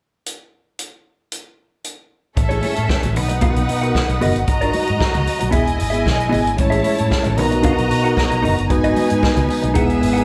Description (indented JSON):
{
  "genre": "disco",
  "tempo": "114 BPM",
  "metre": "4/4",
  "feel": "straight",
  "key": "unclear",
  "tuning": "A4 = 439 Hz",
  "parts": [
    { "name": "vintage drum kit", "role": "drums", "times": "0.3-10.2 s", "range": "hi-hat, kick drum, snare drum", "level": "-24 LUFS", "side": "equal", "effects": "none" },
    { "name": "clear studio string section", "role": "second line", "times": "2.4-10.2 s", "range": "B3 to A#5", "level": "-24 LUFS", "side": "equal", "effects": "plate reverb, slapback echo" },
    { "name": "mellow electric guitar", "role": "accompaniment", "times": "2.4-10.2 s", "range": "A3 to F#5", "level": "-25 LUFS", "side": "equal", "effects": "plate reverb, slapback echo" },
    { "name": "fingered electric bass", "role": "bass", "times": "2.4-10.2 s", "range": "E1 to B2", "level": "-24 LUFS", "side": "equal", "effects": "none" },
    { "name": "congas", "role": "percussion", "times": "2.6-9.8 s", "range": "none", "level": "-32 LUFS", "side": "equal", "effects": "none" },
    { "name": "mellow tine electric piano", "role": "accompaniment", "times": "6.6-10.2 s", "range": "G#3 to C#5", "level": "-22 LUFS", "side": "equal", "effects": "plate reverb, slapback echo" }
  ],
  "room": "moderate club ambience, RT60 0.5 s",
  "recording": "live gig heard through the venue's PA, club reverb",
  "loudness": "-18 LUFS",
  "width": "mono",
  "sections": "0.3-2.4 A section; 2.4-10.2 B section",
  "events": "none",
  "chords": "0.3 N.C.; 2.4 Amaj7; 3.2 Bmaj7; 4.5 G#m7; 5.5 Emaj7; 6.6 Amaj7; 7.4 Bmaj7; 8.7 G#m7"
}